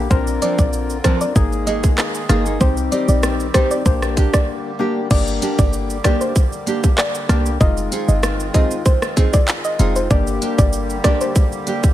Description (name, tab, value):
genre	dancehall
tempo	96 BPM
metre	4/4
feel	straight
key	G phrygian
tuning	A4 = 440 Hz
part	percussive organ stab	accompaniment	0.0-11.3 s	Ab3 to Bb4	-24 LUFS	left 7 dB	chorus
part	accordion	sustained chords	0.0-11.9 s	D3 to Ab4	-29 LUFS	equal	light tremolo tuning, sidechain pumping
part	short 808-style bass	bass	0.0-11.0 s	F1 to C2	-20 LUFS	equal	none
part	soft round pluck	melody	0.1-11.3 s	C5 to F5	-24 LUFS	equal	chorus
part	island pop drum kit	drums	0.1-11.9 s	crash cymbal, handclaps, hi-hat, kick drum, rim click, shaker	-17 LUFS	equal	overdrive
part	nylon-string guitar	arpeggios	0.4-11.9 s	F3 to Ab4	-24 LUFS	right 6 dB	none
room	little or no reverb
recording	none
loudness	-15 LUFS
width	side -13 dB against mid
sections	0.0-5.1 A section; 5.1-11.9 B section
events	break 4.5-5.1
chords	0.1 Bbadd9; 1.4 Absus2; 2.6 Cm; 3.9 Gm/Bb; 5.1 Gm; 7.6 Fm7; 10.1 Gm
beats	| 0.11 0.73 1.36 1.98 | 2.61 3.23 3.86 4.48 | 5.11 5.73 6.36 6.98 | 7.61 8.23 8.86 9.48 | 10.11 10.73 11.36